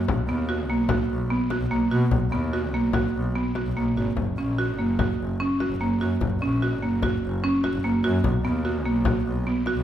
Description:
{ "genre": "contemporary instrumental, chamber music in an uneven meter", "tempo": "148 BPM", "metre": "5/4", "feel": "straight", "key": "unclear", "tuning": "A4 = 440 Hz", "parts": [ { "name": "buzzing marimba with medium hard mallets", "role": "arpeggios", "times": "0.0-9.8 s", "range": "A#3 to F#4", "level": "-24 LUFS", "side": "right 2 dB", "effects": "none" }, { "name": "bright double bass", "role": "bass", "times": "0.0-9.8 s", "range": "F#1 to B2", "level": "-27 LUFS", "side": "left 1 dB", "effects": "none" }, { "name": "frame drum", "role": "percussion", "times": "0.1-9.8 s", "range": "none", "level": "-29 LUFS", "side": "left 4 dB", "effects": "none" } ], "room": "moderate recital hall reverb, RT60 1.6 s", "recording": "none", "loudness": "-22 LUFS", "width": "side -11 dB against mid", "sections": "0.0-9.8 A section", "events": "none", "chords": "0.1 Bmaj7; 4.2 F#; 8.2 B" }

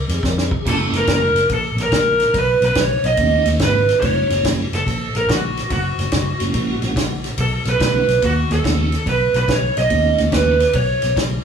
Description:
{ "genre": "electric blues shuffle", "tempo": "143 BPM", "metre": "4/4", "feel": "swing 66% on 8ths", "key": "F# mixolydian", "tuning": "A4 = 440 Hz", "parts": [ { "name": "tonewheel organ", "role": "accompaniment", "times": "0.0-10.5 s", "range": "G3 to A#4", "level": "-25 LUFS", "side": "right 4 dB", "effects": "slow rotary speaker, overdrive, chorus vibrato" }, { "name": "vintage muted fingered electric bass", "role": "bass", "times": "0.1-11.4 s", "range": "F#1 to E#2", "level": "-21 LUFS", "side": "equal", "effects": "none" }, { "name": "natural country drum kit", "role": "drums", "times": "0.1-11.3 s", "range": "crash cymbal, kick drum, ride cymbal, snare drum", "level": "-22 LUFS", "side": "equal", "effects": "none" }, { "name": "lead guitar through a small cranked amp", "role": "melody", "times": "0.7-11.1 s", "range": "F#4 to D#5", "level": "-18 LUFS", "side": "right 2 dB", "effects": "overdrive" } ], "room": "moderate stone room reverb, RT60 1.3 s", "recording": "band playing live in one room, small room ambience", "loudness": "-15 LUFS", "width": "side -7 dB against mid", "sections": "0.7-11.4 A section", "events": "drum fill 0.2-0.7", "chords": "0.0 C# (rootless); 0.7 F#9; 2.3 B9; 4.0 F#9; 7.4 B9" }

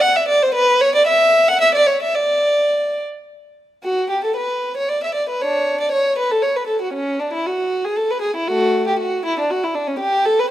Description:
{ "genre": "classical, baroque-style suite movement for unaccompanied violin", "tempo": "70-80 BPM (dotted quarters)", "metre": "6/8", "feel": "rubato", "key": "D major", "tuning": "A4 = 441 Hz", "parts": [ { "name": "dark violin", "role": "solo", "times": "0.0-10.5 s", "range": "A3 to F#5", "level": "-15 LUFS", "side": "equal", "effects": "none" } ], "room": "moderate recital hall reverb, RT60 1.6 s", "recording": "close, detailed microphones", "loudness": "-16 LUFS", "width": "side -13 dB against mid", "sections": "0.0-3.8 A section; 3.8-10.5 B section", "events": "none", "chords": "none" }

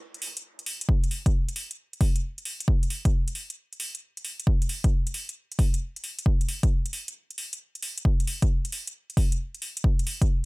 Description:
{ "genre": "UK garage", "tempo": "134 BPM", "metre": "4/4", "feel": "swing 67% on 16ths", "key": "none", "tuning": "none", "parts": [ { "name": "electronic hi-hat", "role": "drums", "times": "0.1-10.3 s", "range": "none", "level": "-33 LUFS", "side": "equal", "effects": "overdrive" }, { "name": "electronic kick drum", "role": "drums", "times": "0.9-10.3 s", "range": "none", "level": "-22 LUFS", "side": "equal", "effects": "overdrive" } ], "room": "little or no reverb", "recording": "echo-heavy mix", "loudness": "-25 LUFS", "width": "side -27 dB against mid", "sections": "0.0-10.5 A section", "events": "none", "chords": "none" }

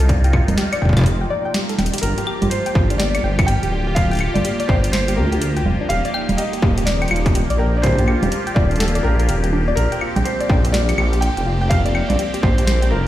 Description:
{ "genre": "IDM", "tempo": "124 BPM", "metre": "4/4", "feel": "swing 62% on 16ths", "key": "G minor", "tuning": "A4 = 439 Hz", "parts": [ { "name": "phased analog pad", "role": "sustained chords", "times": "0.0-13.1 s", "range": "C3 to G4", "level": "-26 LUFS", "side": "right 1 dB", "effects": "phaser, chorus" }, { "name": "soft round pluck", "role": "arpeggios", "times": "0.0-13.0 s", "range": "D4 to G5", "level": "-27 LUFS", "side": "left 3 dB", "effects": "chorus, tape echo" }, { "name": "dark detuned saw bass", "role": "bass", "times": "0.0-13.1 s", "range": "D1 to D2", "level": "-18 LUFS", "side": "equal", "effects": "none" }, { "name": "booming analog drum machine", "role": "drums", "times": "0.0-12.9 s", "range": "claves, congas, hi-hat, snare drum", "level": "-24 LUFS", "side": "right 1 dB", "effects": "digital delay" }, { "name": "electronic kick drum", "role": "drums", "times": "0.1-12.6 s", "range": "none", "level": "-17 LUFS", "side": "equal", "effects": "distortion" }, { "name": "felt-muted upright piano", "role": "melody", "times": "2.0-13.1 s", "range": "A4 to G5", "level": "-25 LUFS", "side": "equal", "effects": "tape echo" } ], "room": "light reverb", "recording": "played on a big sound system in a bare room, large studio reverb", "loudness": "-16 LUFS", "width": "side -13 dB against mid", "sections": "0.0-2.0 A section; 2.0-13.1 B section", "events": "band accent 1.5; drum fill 1.8", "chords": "0.0 F7sus4; 2.0 Gm7; 5.9 Ebmaj7; 9.8 Bb69" }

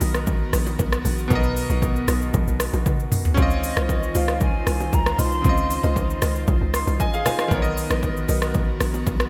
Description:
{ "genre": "amapiano", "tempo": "116 BPM", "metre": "4/4", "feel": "straight", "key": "unclear", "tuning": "A4 = 440 Hz", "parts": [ { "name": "bright concert grand piano", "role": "accompaniment", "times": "0.0-9.3 s", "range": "Cb3 to C6", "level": "-30 LUFS", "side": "equal", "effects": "none" }, { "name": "airy breathy pad", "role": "sustained chords", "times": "0.0-9.3 s", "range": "Eb3 to C5", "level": "-34 LUFS", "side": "equal", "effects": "chorus" }, { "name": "hollow log drum bass", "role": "bass", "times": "0.0-9.3 s", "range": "Bb1 to Db2", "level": "-26 LUFS", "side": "equal", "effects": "none" }, { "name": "deep house drum kit", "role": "drums", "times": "0.0-9.3 s", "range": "hi-hat, kick drum, rim click, shaker, toms", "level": "-26 LUFS", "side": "equal", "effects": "gated reverb" }, { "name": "bongos and congas", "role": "percussion", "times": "0.0-9.2 s", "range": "none", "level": "-34 LUFS", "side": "equal", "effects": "none" }, { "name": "breathy mellow jazz flute", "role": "melody", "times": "3.6-6.0 s", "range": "Eb5 to C6", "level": "-31 LUFS", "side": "equal", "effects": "digital delay" }, { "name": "buzzing marimba with medium mallets", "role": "stabs", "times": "3.8-8.4 s", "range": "F4 to Eb5", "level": "-35 LUFS", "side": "equal", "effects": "digital delay" } ], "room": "light reverb, small room ambience", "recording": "bright 1980s-style digital production", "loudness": "-22 LUFS", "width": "mono", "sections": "0.0-9.3 A section", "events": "drum fill 2.9-3.4; grand piano fill 6.5-7.5", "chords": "0.0 Cbmaj7; 3.4 Dbmaj9; 7.5 Cbmaj7" }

